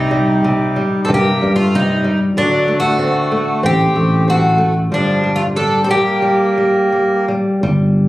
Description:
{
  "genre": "fado-style ballad",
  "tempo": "82-96 BPM",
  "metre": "4/4",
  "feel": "rubato",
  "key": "G minor",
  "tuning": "A4 = 438 Hz",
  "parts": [
    { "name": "fingerpicked twelve-string acoustic guitar", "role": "melody", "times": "0.0-7.3 s", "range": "D4 to A4", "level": "-16 LUFS", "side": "equal", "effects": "none" },
    { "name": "accordion", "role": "second line", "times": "0.0-7.3 s", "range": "F3 to D4", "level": "-22 LUFS", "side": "right 2 dB", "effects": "none" },
    { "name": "nylon-string guitar", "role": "accompaniment", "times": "0.0-8.1 s", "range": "C3 to C4", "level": "-19 LUFS", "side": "left 1 dB", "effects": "none" },
    { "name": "sustaining fretless electric bass", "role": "bass", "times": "0.0-8.1 s", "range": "G1 to G2", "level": "-17 LUFS", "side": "equal", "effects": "none" }
  ],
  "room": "light reverb",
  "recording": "recorded on a phone in the room, club reverb, compression",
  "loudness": "-12 LUFS",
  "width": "side -17 dB against mid",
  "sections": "0.0-7.6 A section",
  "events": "none",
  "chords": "0.0 Cm; 2.4 D7; 4.9 Gm"
}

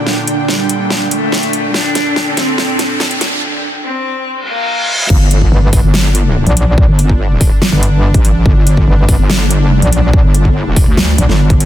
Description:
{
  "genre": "heavy wobble dubstep",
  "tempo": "143 BPM",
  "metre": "4/4",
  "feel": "half-time",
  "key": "G minor",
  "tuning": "A4 = 440 Hz",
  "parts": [
    { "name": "supersaw pad", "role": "sustained chords", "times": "0.0-11.7 s", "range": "Bb2 to G5", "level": "-23 LUFS", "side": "left 1 dB", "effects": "sidechain pumping" },
    { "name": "riser, reverse cymbal and impact", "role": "sound effects", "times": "0.4-6.8 s", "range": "none", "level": "-20 LUFS", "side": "equal", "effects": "none" },
    { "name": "granular cloud pad", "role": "texture", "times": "0.0-11.7 s", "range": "G3 to G5", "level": "-22 LUFS", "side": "right 2 dB", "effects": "built-in reverb, sidechain pumping" },
    { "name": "dubstep drum kit", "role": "drums", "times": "0.1-11.7 s", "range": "crash cymbal, hi-hat, snare drum", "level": "-18 LUFS", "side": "equal", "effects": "high-pass filter on snare, high-pass filter on hats, high-pass filter on cymbals" },
    { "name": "warm cello", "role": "melody", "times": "0.5-5.0 s", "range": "G3 to D4", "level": "-19 LUFS", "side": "left 1 dB", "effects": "low-pass filter, ping-pong delay" },
    { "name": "wobble bass", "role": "bass", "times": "5.1-11.7 s", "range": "G1 to D2", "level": "-12 LUFS", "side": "equal", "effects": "chorus, overdrive" },
    { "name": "electronic kick drum", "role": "drums", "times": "5.1-11.6 s", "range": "none", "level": "-11 LUFS", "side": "equal", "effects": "none" },
    { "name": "metallic wobble bass", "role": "bass", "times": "5.5-11.3 s", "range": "G1 to Bb1", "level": "-10 LUFS", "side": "equal", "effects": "chorus, overdrive" }
  ],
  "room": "little or no reverb",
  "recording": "dense, heavily limited modern master, high-pass filter",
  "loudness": "-10 LUFS",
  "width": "side -12 dB against mid",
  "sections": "0.0-5.1 A section; 5.1-11.7 B section",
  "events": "build-up 0.0-5.1; drum fill 0.0-3.4; filter sweep on cello 0.0-5.1; filter sweep 0.0-5.1; riser 0.4-3.4; break 3.4-5.1; reverse cymbal 4.4-5.1; drop 5.1-11.7; impact 5.1-6.8",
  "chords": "0.0 Gm; 5.1 G5"
}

